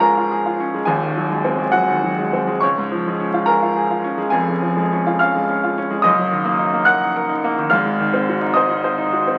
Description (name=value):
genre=classical, virtuoso piano study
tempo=70 BPM (dotted quarters)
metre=6/8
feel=rubato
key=Db major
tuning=A4 = 440 Hz
part: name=bright baby grand piano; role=solo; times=0.0-9.4 s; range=Eb1 to Gb6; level=-18 LUFS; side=equal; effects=none
room=moderate stone room reverb, RT60 1.0 s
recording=very old 78 rpm record, vinyl crackle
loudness=-18 LUFS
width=mono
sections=0.0-9.4 A section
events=none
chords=0.0 Db; 0.9 Ab7/Eb; 2.6 Db; 4.3 Db/F; 6.0 Ebm/Gb; 7.7 Ab7